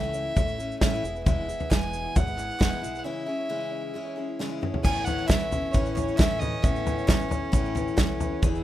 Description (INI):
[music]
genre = indie folk with a building arrangement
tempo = 134 BPM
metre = 4/4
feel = straight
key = unclear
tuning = A4 = 439 Hz
[part]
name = warm fiddle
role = melody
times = 0.0-7.1 s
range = C#5 to G#5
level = -32 LUFS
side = equal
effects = none
[part]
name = picked steel-string acoustic guitar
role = accompaniment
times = 0.0-8.6 s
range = E2 to G#4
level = -32 LUFS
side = left 6 dB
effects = none
[part]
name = dark upright piano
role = arpeggios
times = 0.0-8.6 s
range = B3 to C#5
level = -38 LUFS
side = right 9 dB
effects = none
[part]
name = upright bass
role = bass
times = 0.0-8.6 s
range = E1 to A2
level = -36 LUFS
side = equal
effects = none
[part]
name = tube shaker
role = percussion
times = 0.0-8.6 s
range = none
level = -45 LUFS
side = right 8 dB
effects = none
[part]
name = natural country drum kit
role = drums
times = 0.4-8.5 s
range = crash cymbal, kick drum, snare drum, toms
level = -24 LUFS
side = equal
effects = none
[part]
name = group handclap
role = percussion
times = 1.7-8.1 s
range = none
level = -42 LUFS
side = right 3 dB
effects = none
[part]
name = clear cello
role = second line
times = 4.8-8.6 s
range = C#4 to E4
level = -35 LUFS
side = right 2 dB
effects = none
[sound]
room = little or no reverb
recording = rough home demo mix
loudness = -24 LUFS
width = side -13 dB against mid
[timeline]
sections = 0.0-4.8 A section; 4.8-8.6 B section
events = break 3.1-4.8; drum fill 4.4-4.8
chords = 0.0 A; 1.0 E; 3.1 C#m; 4.8 Aadd9